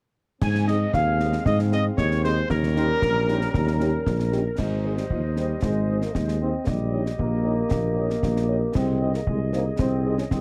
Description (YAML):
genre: military-style march for wind band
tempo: 115 BPM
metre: 2/4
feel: straight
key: Ab major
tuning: A4 = 439 Hz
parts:
  - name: dark trumpet section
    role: melody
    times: 0.4-10.2 s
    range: Bb4 to Ab5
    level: -30 LUFS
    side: equal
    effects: tape echo
  - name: dark woodwind section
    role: second line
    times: 0.4-10.4 s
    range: G4 to Ab5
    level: -34 LUFS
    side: equal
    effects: none
  - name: dark trombone section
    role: sustained chords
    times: 0.4-10.4 s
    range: F3 to Db4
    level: -32 LUFS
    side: equal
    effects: none
  - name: mellow tuba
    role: bass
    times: 0.4-10.4 s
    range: Ab1 to Ab2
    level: -27 LUFS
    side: equal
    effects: none
  - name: concert snare drum, clash cymbals and concert bass drum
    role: drums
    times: 0.4-10.4 s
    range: none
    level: -32 LUFS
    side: equal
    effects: none
  - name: dark French horn section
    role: accompaniment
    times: 0.7-10.1 s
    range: C4 to Db5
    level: -33 LUFS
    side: equal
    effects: none
room: light reverb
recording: cassette tape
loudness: -24 LUFS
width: mono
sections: 0.4-4.6 A section; 4.6-10.4 B section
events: none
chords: 0.4 Ab; 2.5 Eb7; 4.6 Ab; 6.7 Eb7/Bb; 8.8 Ab/C